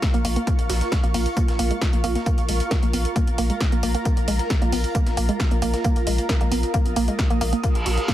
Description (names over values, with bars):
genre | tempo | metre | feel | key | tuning
driving peak-time techno | 134 BPM | 4/4 | straight | Bb minor | A4 = 440 Hz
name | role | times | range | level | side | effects
breakbeat sampler-style drum kit | drums | 0.0-8.1 s | hi-hat, snare drum, tambourine | -37 LUFS | equal | none
electronic kick drum | drums | 0.0-8.1 s | none | -22 LUFS | equal | none
punchy analog drum machine | drums | 0.0-8.1 s | hi-hat, snare drum | -30 LUFS | equal | sidechain pumping on hats, sidechain pumping on cymbals
granular cloud pad | texture | 0.0-8.1 s | F4 to Eb6 | -28 LUFS | right 1 dB | built-in reverb, sidechain pumping
woody wave-folded pluck | riff | 0.1-8.1 s | Ab3 to Bb4 | -27 LUFS | right 1 dB | chorus, sidechain pumping, dub echo
saturated sub bass | bass | 0.1-8.0 s | Bb1 | -24 LUFS | equal | sidechain pumping, low-pass filter
reverse cymbal | sound effects | 7.7-8.1 s | none | -27 LUFS | right 1 dB | none
room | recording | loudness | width
little or no reverb | heavily compressed radio sound | -19 LUFS | side -13 dB against mid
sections
0.0-8.1 A section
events
filter sweep on synth arpeggio sound 0.0-8.1; reverse cymbal 7.7-8.1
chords
0.0 Bb5